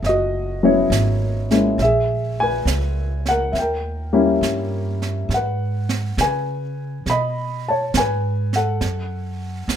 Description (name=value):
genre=jazz ballad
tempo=68 BPM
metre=4/4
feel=swing 67% on 8ths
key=unclear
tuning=A4 = 440 Hz
part: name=dark baby grand piano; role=accompaniment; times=0.0-9.8 s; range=F#3 to B5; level=-20 LUFS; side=left 2 dB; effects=none
part: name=upright bass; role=bass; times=0.0-9.8 s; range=F#1 to C#3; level=-23 LUFS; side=right 2 dB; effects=none
part: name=jazz brush drum kit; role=drums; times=0.0-9.8 s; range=brushed snare drum, hi-hat, snare drum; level=-26 LUFS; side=right 5 dB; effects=none
room=light reverb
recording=minimal, uncompressed stereo recording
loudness=-18 LUFS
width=side -9 dB against mid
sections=0.0-9.8 A section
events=none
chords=0.0 A6; 1.8 A#m7b5; 3.5 D#7b9; 5.3 G#m7; 8.8 F#m